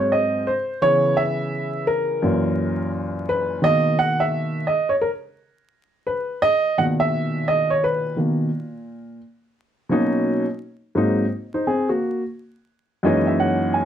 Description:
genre	hip hop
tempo	86 BPM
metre	4/4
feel	swing 65% on 16ths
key	B major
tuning	A4 = 440 Hz
part	dark upright piano	solo	0.0-13.8 s	F#2 to G#5	-19 LUFS	equal	none
room	moderate studio reverb, RT60 0.7 s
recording	dark, warm production, vinyl crackle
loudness	-19 LUFS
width	side -9 dB against mid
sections	0.0-9.2 A section; 9.2-13.8 B section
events	upright piano solo 0.0-9.2; upright piano fill 12.7-13.8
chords	0.0 G#7; 0.8 C#m7; 2.2 F#7; 3.6 Bmaj7; 9.2 Bmaj9; 10.6 G#7; 12.0 F#13

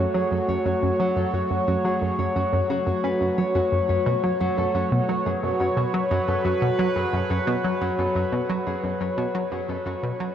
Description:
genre	ambient, sequencer-driven space music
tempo	88 BPM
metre	4/4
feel	straight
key	F# minor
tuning	A4 = 440 Hz
part	sweeping resonant pad	sustained chords	0.0-10.3 s	F#3 to Db5	-25 LUFS	right 2 dB	chorus
part	Celtic harp	arpeggios	0.0-10.3 s	F#3 to C#5	-28 LUFS	left 4 dB	auto-pan, ping-pong delay
part	tight sequenced synth	riff	0.0-10.3 s	F#2 to C#4	-25 LUFS	right 1 dB	chorus, ping-pong delay
room	wet huge ambient reverb, RT60 7.6 s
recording	worn, warbling old tape, cassette tape, warbly pitch drift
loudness	-21 LUFS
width	side -9 dB against mid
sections	0.0-10.3 A section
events	fade-out 7.4-10.3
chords	0.0 F#m

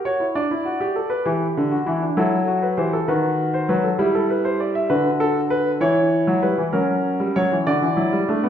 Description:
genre	classical, baroque-style 3-part fugue for grand piano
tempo	66 BPM (dotted quarters)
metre	6/8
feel	straight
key	unclear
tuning	A4 = 440 Hz
part	warm grand piano	solo	0.0-8.5 s	D3 to E5	-18 LUFS	equal	none
room	wet recital hall reverb, RT60 1.4 s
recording	heard from further back in the room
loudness	-18 LUFS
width	side -9 dB against mid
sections	0.0-8.5 A section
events	none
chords	0.4 Bm/D; 1.3 Em; 2.2 F#m7b5; 3.1 B7/D#; 4.0 Em/G; 4.9 Bm/D; 5.8 C#m7b5/E; 6.7 F#7; 7.7 Bm/D (rootless)

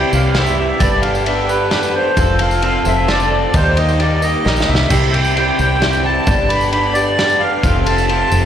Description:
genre	folk rock and heartland rock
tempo	132 BPM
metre	3/4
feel	straight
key	C major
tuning	A4 = 440 Hz
part	accordion	melody	0.0-8.5 s	B4 to B5	-18 LUFS	right 2 dB	light tremolo tuning, plate reverb, slapback echo, analog delay
part	bright grand piano	accompaniment	0.0-8.4 s	D4 to E5	-28 LUFS	equal	none
part	picked twelve-string acoustic guitar	accompaniment	0.0-8.5 s	G2 to A4	-26 LUFS	left 5 dB	plate reverb, slapback echo
part	mellow tonewheel organ	sustained chords	0.0-8.5 s	Bb3 to C5	-30 LUFS	equal	none
part	electric guitar through a small old amp	riff	0.0-8.5 s	F2 to A4	-19 LUFS	left 1 dB	slapback echo
part	fingered electric bass	bass	0.0-8.5 s	F1 to Eb2	-18 LUFS	equal	none
part	tambourine	percussion	0.1-8.4 s	none	-32 LUFS	right 1 dB	none
part	vintage drum kit	drums	0.3-8.2 s	crash cymbal, kick drum, ride cymbal, snare drum	-20 LUFS	equal	none
room	light reverb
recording	live gig heard through the venue's PA, recital hall reverb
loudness	-12 LUFS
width	side -9 dB against mid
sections	0.0-8.5 A section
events	drum fill 4.5-4.9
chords	0.0 C; 0.8 G; 2.2 F; 3.5 Eb; 4.9 C; 6.3 G; 7.6 F

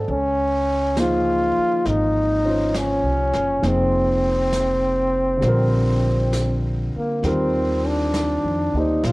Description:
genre	jazz ballad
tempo	67 BPM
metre	4/4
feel	swing 68% on 8ths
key	unclear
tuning	A4 = 440 Hz
part	dark baby grand piano	accompaniment	0.0-9.1 s	D3 to D5	-25 LUFS	right 1 dB	cassette tape
part	upright bass	bass	0.0-9.1 s	F1 to F2	-24 LUFS	equal	none
part	clear trombone	melody	0.1-9.1 s	Bb3 to F4	-20 LUFS	equal	cassette tape
part	jazz brush drum kit	drums	0.1-9.1 s	brushed snare drum, hi-hat, snare drum	-34 LUFS	equal	cassette tape
room	studio reverb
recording	home recording on cassette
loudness	-18 LUFS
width	side -21 dB against mid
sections	0.0-9.1 A section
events	none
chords	0.1 Dbmaj9; 3.6 Fm7; 5.4 Bb; 7.2 Eb69

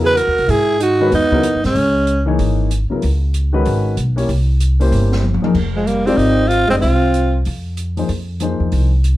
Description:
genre	modal jazz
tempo	189 BPM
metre	4/4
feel	swing 64% on 8ths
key	C# dorian, F dorian from 5.5 s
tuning	A4 = 440 Hz
part	breathy alto saxophone	second line	0.0-2.2, 5.8-7.4 s	F3 to G#4	-20 LUFS	right 3 dB	none
part	dark grand piano	accompaniment	0.0-8.9 s	C#3 to Eb5	-20 LUFS	left 3 dB	none
part	upright bass	bass	0.0-9.2 s	F1 to G#2	-17 LUFS	equal	none
part	growling tenor saxophone	melody	0.1-2.2, 5.8-7.4 s	Ab3 to B4	-16 LUFS	equal	plate reverb
part	open jazz drum kit	drums	0.2-9.1 s	crash cymbal, hi-hat, kick drum, snare drum, toms	-26 LUFS	equal	none
room	light reverb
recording	dark, warm production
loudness	-14 LUFS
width	side -16 dB against mid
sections	0.0-5.5 A section; 5.5-9.2 B section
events	drum fill 5.2-5.5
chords	0.0 C#m11; 4.3 C7b9; 5.5 Fm9

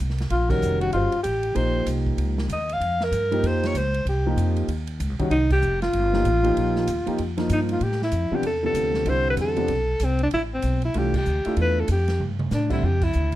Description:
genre	modal jazz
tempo	192 BPM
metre	4/4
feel	swing 62% on 8ths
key	A minor from 7.8 s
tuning	A4 = 440 Hz
part	upright bass	bass	0.0-13.4 s	F1 to A2	-24 LUFS	equal	none
part	swinging big-band drum kit	drums	0.1-13.4 s	crash cymbal, hi-hat, kick drum, ride cymbal, snare drum, toms	-33 LUFS	right 2 dB	none
part	breathy alto saxophone	melody	0.3-13.3 s	C4 to F5	-24 LUFS	equal	none
part	warm upright piano	accompaniment	0.5-12.8 s	C3 to C5	-27 LUFS	equal	none
room	light reverb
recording	dark, warm production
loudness	-20 LUFS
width	side -14 dB against mid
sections	0.0-7.8 A section; 7.8-13.4 B section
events	band accent 0.5, 5.5, 11.1, 13.0; drum fill 12.2-12.5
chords	0.0 F9sus4; 7.8 Am11; 12.8 Dmadd9

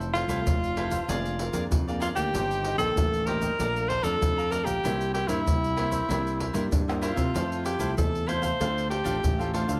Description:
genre	samba and choro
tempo	96 BPM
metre	4/4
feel	straight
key	F major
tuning	A4 = 440 Hz
part	cavaquinho	accompaniment	0.0-9.8 s	D4 to Bb5	-37 LUFS	equal	none
part	nylon-string guitar	accompaniment	0.0-9.8 s	F2 to Ab4	-38 LUFS	equal	none
part	growling fingered electric bass	bass	0.0-9.8 s	F1 to D3	-34 LUFS	equal	overdrive
part	egg shaker, pandeiro, surdo and tamborim	percussion	0.0-9.8 s	none	-32 LUFS	equal	none
part	breathy alto saxophone	melody	0.1-9.8 s	E4 to C5	-31 LUFS	equal	none
room	light reverb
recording	none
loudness	-27 LUFS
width	mono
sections	0.0-9.8 A section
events	drum fill 6.9-7.4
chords	0.0 Fmaj7; 1.1 Bb7/F; 2.3 Eb6/G; 3.6 Bbmaj7; 4.8 C7; 7.4 Fmaj7; 8.6 Dm7

